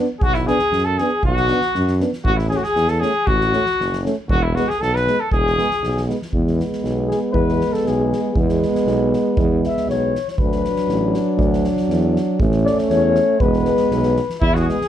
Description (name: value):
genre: balkan folk, Balkan brass band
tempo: 118 BPM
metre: 2/4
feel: straight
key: E mixolydian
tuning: A4 = 439 Hz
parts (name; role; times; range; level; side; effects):
- warm French horn; accompaniment; 0.0-14.8 s; B3 to D4; -23 LUFS; left 4 dB; none
- warm euphonium; accompaniment; 0.0-14.8 s; F#3 to B3; -23 LUFS; right 6 dB; none
- warm trumpet; melody; 0.2-6.0, 14.4-14.9 s; E4 to B4; -20 LUFS; left 1 dB; none
- dark flugelhorn; second line; 0.2-14.9 s; E4 to E5; -23 LUFS; left 5 dB; none
- clear tuba; bass; 0.2-14.7 s; E1 to F#2; -21 LUFS; equal; none
- soft-mallet drum kit; percussion; 0.2-14.9 s; kick drum, snare drum; -24 LUFS; right 1 dB; none
room: light reverb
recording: dark, warm production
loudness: -16 LUFS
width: side -10 dB against mid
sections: 0.0-6.3 A section; 6.3-14.4 B section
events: flugelhorn solo 6.3-14.4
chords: 0.0 Bm; 2.3 A; 4.3 E; 10.4 D; 12.4 A; 13.4 E